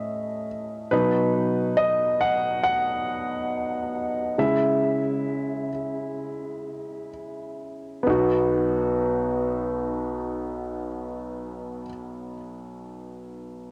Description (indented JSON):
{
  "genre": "pop",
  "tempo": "62-71 BPM",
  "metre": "4/4",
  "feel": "straight",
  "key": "B major",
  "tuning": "A4 = 438 Hz",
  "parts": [
    { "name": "clear grand piano", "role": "solo", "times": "0.0-13.7 s", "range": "B1 to F#5", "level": "-26 LUFS", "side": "equal", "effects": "analog delay" }
  ],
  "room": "light reverb, small room ambience",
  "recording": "home recording on cassette",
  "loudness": "-25 LUFS",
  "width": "mono",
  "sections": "0.0-8.1 A section; 8.1-11.9 B section",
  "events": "grand piano solo 0.0-8.1; slowing down 0.9-8.1",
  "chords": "0.0 Amaj7#11; 0.9 B; 4.4 C#m; 8.1 B"
}